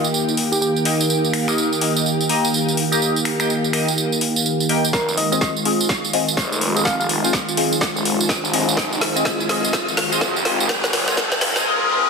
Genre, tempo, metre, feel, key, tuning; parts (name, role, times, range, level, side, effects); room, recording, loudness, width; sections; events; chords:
bass house; 125 BPM; 4/4; swing 60% on 16ths; F minor; A4 = 444 Hz
soft struck synth lead; melody; 0.0-0.7, 4.9-7.1 s; G4 to F5; -26 LUFS; equal; chorus, cassette tape, ping-pong delay
sweeping resonant pad; sustained chords; 0.0-11.6 s; Eb3 to G4; -24 LUFS; equal; chorus, sidechain pumping
band-passed chord stab; stabs; 0.0-12.1 s; Bb3 to G5; -23 LUFS; left 2 dB; phaser, lush chorus, sidechain pumping, ping-pong delay
garage drum kit; drums; 0.0-11.6 s; finger snaps, hi-hat, snare drum, tambourine; -21 LUFS; right 1 dB
granular cloud pad; texture; 0.0-11.7 s; Eb4 to Bb5; -27 LUFS; right 1 dB; built-in reverb, sidechain pumping
phased detuned saw bass; bass; 4.9-11.5 s; Eb1 to Ab1; -26 LUFS; equal; phaser, tube saturation, sidechain pumping, high-pass filter
electronic kick drum; drums; 4.9-11.3 s; -24 LUFS; equal; high-pass filter on kick
riser; sound effects; 7.1-12.1 s; -28 LUFS; equal
wet lush hall reverb, RT60 2.2 s; dense, heavily limited modern master, high-pass filter; -17 LUFS; side -5 dB against mid
0.0-4.9 A section; 4.9-12.1 B section
build-up 4.9-12.1; drum fill 4.9-11.7; filter sweep on synth stab 4.9-12.1; riser 7.1-12.1
0.0 Eb; 4.9 Fm7